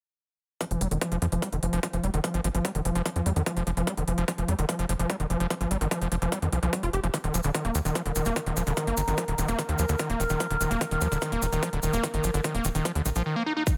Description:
psychedelic trance; 147 BPM; 4/4; straight; A4 = 438 Hz
overdriven acid bass; riff; 0.6-13.6 s; D3 to G4; -31 LUFS; equal; distortion, sidechain pumping, digital delay
electronic hi-hat; drums; 0.6-13.8 s; -39 LUFS; equal; overdrive
electronic kick drum; drums; 0.6-13.8 s; -31 LUFS; equal; overdrive, high-pass filter on kick
tight sequencer bass; bass; 0.7-13.2 s; Eb1 to F2; -31 LUFS; equal
overtone-sweeping drone; sustained chords; 8.1-13.8 s; Bb4; -35 LUFS; equal; chorus, built-in reverb, sidechain pumping
tube shaker; percussion; 7.1-13.8 s; -39 LUFS; equal
vowel-sweep wobble bass; second line; 9.1-9.6 s; Bb3 to C4; -47 LUFS; equal
light reverb; -28 LUFS; mono
0.6-13.7 A section
filter sweep on acid bass 0.6-13.7
0.6 F5; 7.1 Eb5
| 0.61 1.01 1.42 1.83 | 2.24 2.65 3.06 3.46 | 3.87 4.28 4.69 5.10 | 5.50 5.91 6.32 6.73 | 7.14 7.55 7.95 8.36 | 8.77 9.18 9.59 9.99 | 10.40 10.81 11.22 11.63 | 12.04 12.44 12.85 13.26 | 13.67

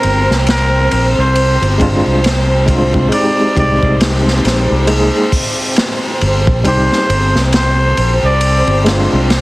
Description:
trip hop; 68 BPM; 4/4; swing 59% on 16ths; C minor; A4 = 443 Hz
trumpet with straight mute; melody; 0.0-8.8 s; Bb4 to D5; -18 LUFS; equal; tape echo
bright symphonic violin section; sustained chords; 0.0-9.4 s; C4 to C5; -18 LUFS; right 1 dB
modern bright fingered electric bass; bass; 0.0-9.4 s; G1 to C2; -14 LUFS; equal
crunchy breakbeat drum kit; drums; 0.0-9.4 s; hi-hat, kick drum, ride cymbal, snare drum; -16 LUFS; equal
overdriven tine electric piano; accompaniment; 1.8-9.3 s; G3 to Ab4; -17 LUFS; equal; medium tremolo
light reverb; heavily compressed radio sound, multiband compression, vinyl crackle; -10 LUFS; side -19 dB against mid
0.0-9.4 A section
0.0 C5; 1.4 Fm69/G; 3.1 Abmaj9#11; 4.9 Absus2/C; 6.7 Cm; 8.4 Fm69/G
0.48 1.36 2.24 | 3.12 4.01 4.89 5.77 | 6.65 7.54 8.42 9.30

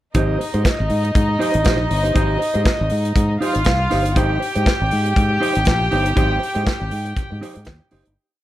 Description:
disco; 120 BPM; 4/4; swing 56% on 16ths; Ab major; A4 = 440 Hz
mellow electric guitar; accompaniment; 0.1-8.1 s; Eb4 to C5; -24 LUFS; right 1 dB; spring reverb
modern studio drum kit; drums; 0.1-8.2 s; hi-hat, kick drum, snare drum; -21 LUFS; equal
warm studio violin section; second line; 0.2-8.1 s; Eb4 to G5; -22 LUFS; equal
fingered electric bass; bass; 0.2-8.2 s; Gb1 to Ab2; -20 LUFS; equal
little or no reverb; -16 LUFS; side -14 dB against mid
0.1-8.2 groove
fade-out 6.2-8.2
0.1 Abmaj7
| 0.15 0.65 1.15 1.65 | 2.15 2.65 3.15 3.66 | 4.16 4.66 5.16 5.66 | 6.17 6.67 7.17 7.67

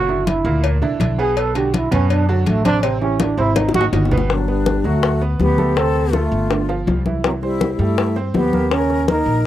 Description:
Afro-Cuban jazz; 163 BPM; 4/4; straight; G major; A4 = 440 Hz
breathy trombone; melody; 0.0-9.5 s; F#3 to A4; -20 LUFS; right 3 dB
bright upright piano; accompaniment; 0.0-9.4 s; A#2 to C5; -24 LUFS; right 5 dB
upright bass; bass; 0.0-9.5 s; F#1 to G2; -20 LUFS; left 1 dB
congas; percussion; 0.1-9.5 s; -22 LUFS; left 2 dB
cowbell and bongos; percussion; 0.3-9.3 s; -23 LUFS; left 6 dB
breathy hollow concert flute; second line; 4.3-9.5 s; C4 to Bb4; -24 LUFS; left 7 dB; slapback echo
small room ambience; dry, close 1970s-style studio recording; -15 LUFS; side -12 dB against mid
0.0-4.3 A section; 4.3-9.5 B section
trombone solo 0.0-4.3; drum fill 3.2-4.3
0.0 F#aug7; 1.4 Bm7; 2.8 Am7; 3.6 Ab7; 4.3 Gmaj7; 5.8 Dm7; 6.5 G5; 7.2 C6; 8.7 Eb7(no3)
0.27 0.64 1.00 | 1.37 1.74 2.10 2.47 | 2.83 3.20 3.56 3.93 | 4.30 4.67 5.03 5.40 | 5.77 6.13 6.50 6.87 | 7.24 7.61 7.98 8.35 | 8.71 9.08 9.45

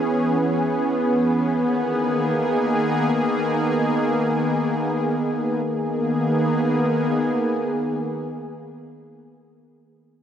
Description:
synthwave; free time; G# minor; A4 = 437 Hz
lush unison pad; sustained chords; 0.0-9.2 s; D#3 to G#4; -20 LUFS; equal; chorus
wet plate reverb, RT60 2.6 s; dreamy mix soaked in reverb; -19 LUFS; side -9 dB against mid
0.0-5.6 A section; 5.6-9.7 B section
0.0 E6; 1.5 G#madd9
free time

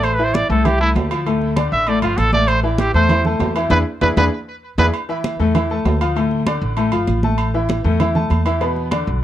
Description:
latin, salsa; 196 BPM; 4/4; straight; A minor; A4 = 441 Hz
clear trumpet; melody; 0.0-4.9 s; E4 to E5; -19 LUFS; right 1 dB; tape echo
bright upright piano; accompaniment; 0.0-9.2 s; A2 to A5; -20 LUFS; left 3 dB
upright bass; bass; 0.0-9.2 s; G1 to E2; -19 LUFS; equal
agogo bells and timbales; percussion; 0.0-9.1 s; -27 LUFS; right 4 dB
congas; percussion; 0.0-9.2 s; -23 LUFS; right 2 dB
light reverb; worn, warbling old tape, cassette tape, warbly pitch drift; -15 LUFS; side -12 dB against mid
0.0-4.9 A section; 4.9-9.2 B section
trumpet solo 0.0-4.9; band accent 3.7-4.9; drum fill 4.0-4.9
0.0 Am; 1.3 Dm; 2.5 Am; 3.7 E7; 4.9 A5; 6.2 Dm; 7.4 A5; 8.6 E5
| 0.04 0.34 0.65 0.96 | 1.26 1.57 1.87 2.18 | 2.49 2.79 3.10 3.40 | 3.71 4.02 4.32 4.63 | 4.93 5.24 5.55 5.85 | 6.16 6.47 6.77 7.08 | 7.38 7.69 8.00 8.30 | 8.61 8.92 9.22

